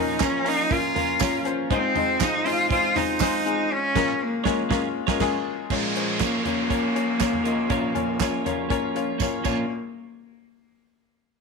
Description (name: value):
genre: piano-driven pop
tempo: 120 BPM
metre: 4/4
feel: straight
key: Bb minor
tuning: A4 = 440 Hz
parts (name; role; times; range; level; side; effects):
- clear cello; melody; 0.0-9.7 s; Ab3 to F4; -25 LUFS; left 1 dB; none
- felt-muted upright piano; accompaniment; 0.0-9.7 s; Ab1 to Ab5; -27 LUFS; left 12 dB; none
- twelve-string electric guitar; riff; 0.0-9.7 s; Bb2 to Db5; -29 LUFS; right 16 dB; spring reverb
- natural country drum kit; drums; 0.2-9.6 s; crash cymbal, handclaps, hi-hat, kick drum, snare drum, toms; -28 LUFS; right 6 dB; none
- tambourine; percussion; 0.2-9.7 s; none; -36 LUFS; right 18 dB; none
- downlifter; sound effects; 5.7-9.7 s; none; -32 LUFS; right 2 dB; none
room: light reverb, studio reverb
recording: 1960s-style stereo with parts hard left and right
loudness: -21 LUFS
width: side -4 dB against mid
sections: 0.0-5.7 A section; 5.7-9.7 B section; 9.7-11.4 C section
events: band accent 3.7-5.7; felt piano fill 8.7-9.7; drum fill 9.2-9.7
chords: 0.0 Bbm; 1.7 Fm7/Ab; 3.7 Bbm7; 5.7 Bbm; 9.7 N.C.